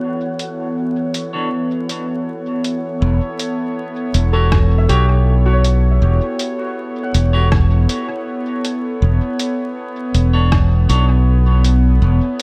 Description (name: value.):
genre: ambient dub.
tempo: 80 BPM.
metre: 4/4.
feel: straight.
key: E dorian.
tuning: A4 = 445 Hz.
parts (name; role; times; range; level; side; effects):
warbly tape-like pad; sustained chords; 0.0-12.4 s; E3 to C#5; -24 LUFS; equal; chorus, built-in reverb.
Celtic harp; arpeggios; 0.0-9.9 s; F#4 to F#5; -29 LUFS; equal; dub echo.
wind-like tuned noise texture; texture; 0.0-3.0 s; F#4 to F#5; -41 LUFS; equal; built-in reverb.
lo-fi sampler-style drum kit; drums; 0.4-12.4 s; hi-hat, rim click; -28 LUFS; equal; dub echo.
clean electric guitar; stabs; 1.3-11.0 s; E3 to C#5; -28 LUFS; equal; low-pass filter, dub echo.
modern bright fingered electric bass; bass; 3.0-12.2 s; E1 to B1; -15 LUFS; equal; none.
electronic kick drum; drums; 4.5-10.7 s; none; -19 LUFS; equal; none.
room: light reverb, digital ambience.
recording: vinyl crackle.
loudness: -17 LUFS.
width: mono.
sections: 0.0-3.0 A section; 3.0-12.4 B section.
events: filter sweep on ambient pad 0.0-3.0.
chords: 0.0 B7(no3)/E; 3.0 Em69; 9.0 B7(no3)/E.